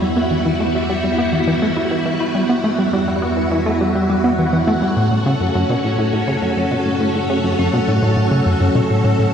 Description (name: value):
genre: ambient, sequencer-driven space music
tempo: 103 BPM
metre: 4/4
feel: straight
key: unclear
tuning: A4 = 440 Hz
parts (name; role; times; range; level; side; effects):
- string machine, full ensemble; sustained chords; 0.0-9.3 s; G3 to A4; -20 LUFS; left 1 dB; ensemble chorus, shimmer reverb
- vibraphone with medium hard mallets; arpeggios; 0.0-9.3 s; A3 to F#5; -23 LUFS; right 3 dB; auto-pan, low-pass filter, analog delay, shimmer reverb
- plucky analog bass; riff; 0.0-9.3 s; F#2 to E4; -18 LUFS; equal; analog delay
- analog drone; bass; 0.0-9.3 s; E2 to F#2; -28 LUFS; equal; chorus
room: wet spring reverb, RT60 2.6 s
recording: echo-heavy mix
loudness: -15 LUFS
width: side -8 dB against mid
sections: 0.0-9.3 A section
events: filter sweep on vibraphone 0.0-9.3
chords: 0.0 Emadd9; 5.0 F#m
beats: | 0.31 0.89 1.48 2.06 | 2.64 3.22 3.81 4.39 | 4.97 5.55 6.13 6.72 | 7.30 7.88 8.46 9.05